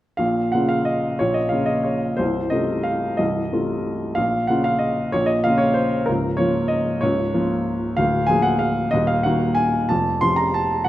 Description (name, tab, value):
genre	classical, piano waltz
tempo	173-198 BPM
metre	3/4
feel	rubato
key	Bb minor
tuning	A4 = 440 Hz
part	clear upright piano	solo	0.2-10.9 s	C1 to C6	-18 LUFS	equal	none
room	wet recital hall reverb, RT60 1.5 s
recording	dark, warm production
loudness	-18 LUFS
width	side -14 dB against mid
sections	0.2-10.9 A section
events	none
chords	0.2 Bbm; 2.2 F7/C; 4.2 Bbm; 6.1 Bbm/Db; 8.0 Bb7/D; 8.9 Ebm; 9.9 F